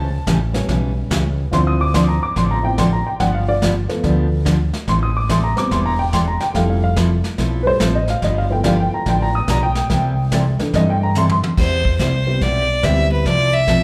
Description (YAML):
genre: country, western swing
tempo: 143 BPM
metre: 4/4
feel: swing 66% on 8ths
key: C major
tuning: A4 = 440 Hz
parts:
  - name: dark upright piano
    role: accompaniment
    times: 0.0-13.3 s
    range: E3 to Eb6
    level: -23 LUFS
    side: equal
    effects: none
  - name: picked steel-string acoustic guitar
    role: accompaniment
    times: 0.0-13.8 s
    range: C3 to A4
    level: -24 LUFS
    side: equal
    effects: none
  - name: growling FM bass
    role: bass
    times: 0.0-13.8 s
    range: E1 to G2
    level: -22 LUFS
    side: equal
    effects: none
  - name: vintage brush drum kit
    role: drums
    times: 0.3-13.8 s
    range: brushed snare drum, crash cymbal, hi-hat, kick drum, snare drum, toms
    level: -26 LUFS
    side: equal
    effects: none
  - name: rich fiddle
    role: melody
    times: 11.6-13.8 s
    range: B4 to E5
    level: -21 LUFS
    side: equal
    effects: none
room: moderate large studio reverb, RT60 1.4 s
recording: band playing live in one room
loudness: -18 LUFS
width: mono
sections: 0.0-11.6 A section; 11.6-13.8 B section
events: upright piano solo 0.0-11.6; drum fill 11.2-11.6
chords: 0.0 A7; 1.5 Dm7; 3.2 G7; 4.9 Am7; 6.6 Fmaj7; 8.2 G13; 9.9 C6; 11.6 Cmaj7; 13.3 Fmaj7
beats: 0.26 0.68 1.10 | 1.52 1.94 2.36 2.78 | 3.20 3.62 4.04 4.46 | 4.88 5.29 5.71 6.13 | 6.55 6.97 7.39 7.81 | 8.23 8.65 9.06 9.48 | 9.90 10.32 10.74 11.16 | 11.58 12.00 12.42 12.84 | 13.26 13.68